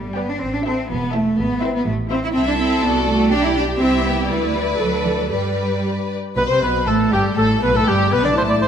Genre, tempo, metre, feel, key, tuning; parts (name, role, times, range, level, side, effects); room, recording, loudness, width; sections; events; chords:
quick classical-period movement for symphony orchestra; 122 BPM; 2/4; rubato; G major; A4 = 438 Hz
rich studio cello section; bass; 0.0-8.7 s; G2 to E4; -21 LUFS; right 2 dB
rich studio double bass section; bass; 0.0-8.7 s; E1 to G2; -25 LUFS; right 2 dB
rich studio violin section; melody; 0.2-8.7 s; G4 to A5; -27 LUFS; left 3 dB
rich studio violin section; second line; 0.2-8.7 s; E4 to D5; -24 LUFS; left 3 dB
rich studio viola section; accompaniment; 0.2-8.7 s; G3 to B4; -24 LUFS; right 1 dB
warm cor anglais; second line; 6.4-8.7 s; G4 to D5; -19 LUFS; right 1 dB
mellow French horn section; sustained chords; 6.4-8.7 s; G3 to E4; -24 LUFS; left 4 dB
moderate scoring stage reverb, RT60 1.5 s; -16 LUFS; side -8 dB against mid
0.0-6.4 A section; 6.4-8.7 A section
0.4 Am; 1.4 E/G#; 1.9 Am; 2.3 Am/C; 2.8 D7/C; 3.3 G/B; 3.8 C; 4.3 G/D; 4.8 D; 5.3 G; 6.4 G/B; 7.4 Asus2; 7.9 G